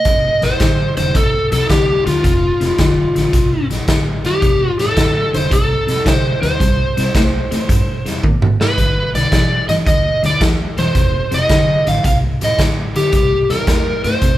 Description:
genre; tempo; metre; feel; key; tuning
electric blues shuffle; 110 BPM; 4/4; swing 68% on 8ths; unclear; A4 = 441 Hz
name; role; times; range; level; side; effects
overdriven slide guitar; melody; 0.0-14.4 s; F4 to F5; -17 LUFS; equal; none
electric guitar at the edge of break-up; riff; 0.0-14.4 s; F2 to A3; -21 LUFS; left 2 dB; phaser
raw garage drum kit; drums; 0.0-14.4 s; hi-hat, kick drum, snare drum, toms; -16 LUFS; equal; none
upright bass; bass; 0.1-14.4 s; E1 to G2; -22 LUFS; equal; none
room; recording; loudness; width
light reverb; band playing live in one room; -13 LUFS; side -14 dB against mid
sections
0.0-14.4 A section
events
drum fill 8.2-8.8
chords
0.1 F; 6.6 C5; 8.8 G; 11.0 F7; 13.1 C7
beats
| 0.06 0.60 1.15 1.70 | 2.24 2.79 3.33 3.88 | 4.42 4.97 5.51 6.06 | 6.60 7.15 7.69 8.23 | 8.78 9.32 9.87 10.41 | 10.95 11.50 12.04 12.59 | 13.13 13.67 14.22

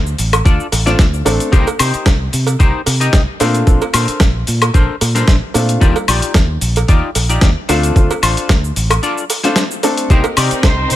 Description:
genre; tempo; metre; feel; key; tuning
nu-disco, nu disco; 112 BPM; 4/4; swing 53% on 16ths; unclear; A4 = 439 Hz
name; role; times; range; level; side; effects
fingered electric bass with an envelope filter; bass; 0.0-11.0 s; A1 to C3; -17 LUFS; equal; none
dusty soul sampler-style drum kit; drums; 0.1-11.0 s; hi-hat, shaker, snare drum, woodblock; -18 LUFS; left 1 dB; studio reverb
semi-hollow electric guitar; riff; 0.2-10.9 s; D4 to Eb5; -21 LUFS; left 3 dB; analog chorus, ping-pong delay
cowbell; percussion; 0.3-10.8 s; none; -22 LUFS; right 7 dB; none
electronic kick drum; drums; 0.5-10.8 s; none; -11 LUFS; equal; studio reverb
clear grand piano; accompaniment; 0.9-10.2 s; G3 to A4; -19 LUFS; left 1 dB; ping-pong delay
dark symphonic string section; sustained chords; 10.1-11.0 s; C4 to Bb4; -22 LUFS; equal; sidechain pumping
mellow trumpet section; melody; 10.6-11.0 s; C5; -18 LUFS; right 2 dB; none
room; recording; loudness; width
small room ambience; none; -11 LUFS; side -13 dB against mid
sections
0.0-11.0 A section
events
break 9.0-10.1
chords
0.0 Dm7; 1.5 Cm7; 3.4 Bbmaj9; 5.8 Ebmaj9; 7.7 Dm7; 10.1 Cm7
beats
0.46 0.99 | 1.53 2.06 2.60 3.13 | 3.67 4.21 4.74 5.28 | 5.81 6.35 6.88 7.42 | 7.96 8.49 9.03 9.56 | 10.10 10.63

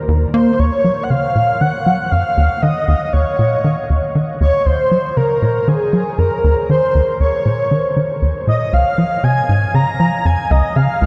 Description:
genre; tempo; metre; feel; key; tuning
ambient; 118 BPM; 4/4; straight; Eb dorian; A4 = 440 Hz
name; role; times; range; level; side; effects
breathy flute-like synth lead; melody; 0.0-11.1 s; Ab4 to Bb5; -19 LUFS; equal; tremolo, ensemble chorus, tape echo
tight sequencer bass; riff; 0.1-11.1 s; Db2 to Bb3; -18 LUFS; equal; tape echo
room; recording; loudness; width
wet huge ambient reverb, RT60 8.9 s; dark, warm production; -15 LUFS; mono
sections
0.6-11.1 A section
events
filter sweep on analog synth bass 0.6-11.1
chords
0.0 Eb5; 0.6 Eb7(no3); 8.7 Dbmaj7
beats
0.09 | 0.59 1.10 1.61 2.12 | 2.63 3.14 3.64 4.15 | 4.66 5.17 5.68 6.19 | 6.70 7.20 7.71 8.22 | 8.73 9.24 9.75 10.25 | 10.76

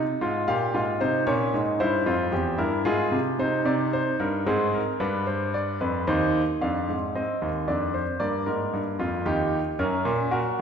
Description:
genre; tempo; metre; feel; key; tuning
classical, baroque-style 3-part fugue for grand piano; 113 BPM; 3/4; straight; F minor; A4 = 441 Hz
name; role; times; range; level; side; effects
clear concert grand piano; solo; 0.0-10.6 s; Eb2 to F5; -23 LUFS; equal; none
room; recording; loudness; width
wet scoring stage reverb, RT60 1.7 s; heard from further back in the room; -23 LUFS; side -7 dB against mid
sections
0.0-6.6 A section; 6.6-10.6 B section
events
none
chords
0.2 Fm/Ab; 1.3 Bbm; 1.8 C; 2.9 Fm/Ab; 3.4 Cm; 4.5 Abadd9; 5.0 G; 6.1 Cm/Eb; 6.6 Fm; 7.7 Dm7/F; 8.2 Gm; 9.3 Eb; 9.8 Gb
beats
| 0.21 0.74 1.27 | 1.80 2.33 2.85 | 3.39 3.92 4.46 | 4.99 5.53 6.07 | 6.61 7.15 7.68 | 8.21 8.74 9.27 | 9.79 10.32

